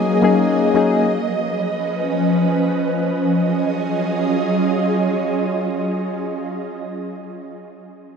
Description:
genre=amapiano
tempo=free time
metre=none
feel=none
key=Eb minor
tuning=A4 = 440 Hz
part: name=soft electric-piano-like synth keys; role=accompaniment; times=0.0-1.0 s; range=Gb3 to Ab4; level=-16 LUFS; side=left 4 dB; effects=chorus
part: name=ethereal airy pad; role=sustained chords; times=0.0-6.5 s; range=F3 to Eb5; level=-19 LUFS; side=right 1 dB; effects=ensemble chorus, built-in reverb
room=moderate lush hall reverb, RT60 1.7 s, digital ambience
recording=none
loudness=-17 LUFS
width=side -6 dB against mid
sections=0.0-3.1 A section; 3.1-7.3 B section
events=none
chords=0.0 Gb69; 1.0 Db9; 3.1 Ebm11

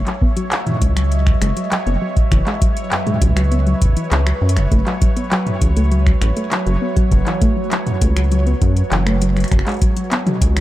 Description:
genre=IDM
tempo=100 BPM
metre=4/4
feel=straight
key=unclear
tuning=A4 = 441 Hz
part: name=warbly tape-like pad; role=sustained chords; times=0.0-10.6 s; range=F#3 to G#5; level=-25 LUFS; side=right 2 dB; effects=chorus, built-in reverb
part: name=soft round pluck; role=arpeggios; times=0.0-10.6 s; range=F#2 to B3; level=-22 LUFS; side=left 2 dB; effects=chorus, digital delay
part: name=rubbery square bass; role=bass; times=0.0-10.6 s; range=F#1 to F#2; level=-16 LUFS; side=equal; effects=none
part: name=bubbling stepped-filter texture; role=texture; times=0.0-10.6 s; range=C#5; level=-32 LUFS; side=right 2 dB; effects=chorus, built-in reverb, sidechain pumping
part: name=electro analog drum machine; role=drums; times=0.1-10.6 s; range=finger snaps, handclaps, hi-hat, toms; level=-23 LUFS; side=equal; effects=none
part: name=electronic kick drum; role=drums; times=0.2-10.5 s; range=none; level=-16 LUFS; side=equal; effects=none
room=little or no reverb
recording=dark, warm production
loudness=-14 LUFS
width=side -15 dB against mid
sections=0.0-10.6 A section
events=none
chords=0.0 C#m11; 4.7 A69/F#; 9.5 Emaj9/F# (rootless)

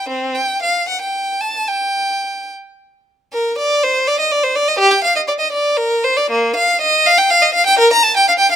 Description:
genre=classical, baroque-style suite movement for unaccompanied violin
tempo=72-85 BPM (dotted quarters)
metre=6/8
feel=rubato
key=G minor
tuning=A4 = 440 Hz
part: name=clear violin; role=solo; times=0.0-8.6 s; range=Bb3 to Bb5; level=-13 LUFS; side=equal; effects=none
room=light reverb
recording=close, detailed microphones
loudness=-13 LUFS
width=side -9 dB against mid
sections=0.0-3.3 A section; 3.3-8.6 B section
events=none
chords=none

